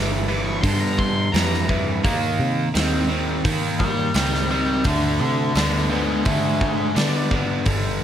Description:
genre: blues rock power trio and southern rock.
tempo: 85 BPM.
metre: 4/4.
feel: straight.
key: unclear.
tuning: A4 = 440 Hz.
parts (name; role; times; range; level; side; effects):
octave-fuzz lead guitar; melody; 0.0-7.3 s; Eb4 to D6; -26 LUFS; left 1 dB; distortion.
raw garage guitar; riff; 0.0-8.0 s; G2 to C4; -22 LUFS; equal; overdrive.
vintage muted picked electric bass; bass; 0.0-8.0 s; G1 to Eb3; -25 LUFS; equal; none.
big rock drum kit; drums; 0.6-7.8 s; hi-hat, kick drum, snare drum; -24 LUFS; equal; none.
room: light reverb.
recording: none.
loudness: -18 LUFS.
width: side -10 dB against mid.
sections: 0.0-8.0 A section.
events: none.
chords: 0.0 G5; 2.0 Eb5; 4.9 D5.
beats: 0.64 1.34 | 2.04 2.75 3.45 4.16 | 4.86 5.56 6.27 6.97 | 7.67.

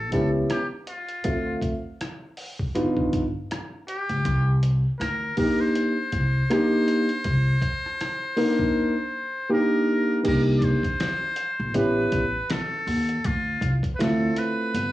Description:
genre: hip hop, jazz-hop.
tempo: 80 BPM.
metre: 4/4.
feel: swing 60% on 16ths.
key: C minor.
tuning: A4 = 445 Hz.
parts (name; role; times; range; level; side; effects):
trumpet with metal mute; melody; 0.0-14.9 s; F4 to D5; -28 LUFS; left 1 dB; cassette tape, plate reverb.
upright bass; bass; 0.0-14.9 s; G1 to Eb2; -25 LUFS; equal; none.
dark concert grand piano; accompaniment; 0.1-14.7 s; A3 to E5; -23 LUFS; equal; plate reverb.
dusty soul sampler-style drum kit; drums; 0.1-14.9 s; crash cymbal, hi-hat, kick drum, rim click, snare drum; -31 LUFS; equal; none.
room: light reverb.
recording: home recording on cassette, small room reverb.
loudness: -22 LUFS.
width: side -15 dB against mid.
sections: 0.0-10.2 A section; 10.2-14.9 B section.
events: none.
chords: 0.0 A7; 1.2 Dm7; 2.7 G7b13; 4.2 Cm9; 11.7 A7; 13.2 Dm7.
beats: 0.50 | 1.25 2.00 2.75 3.50 | 4.25 5.00 5.75 6.50 | 7.25 8.00 8.75 9.50 | 10.25 11.00 11.75 12.50 | 13.25 14.00 14.75.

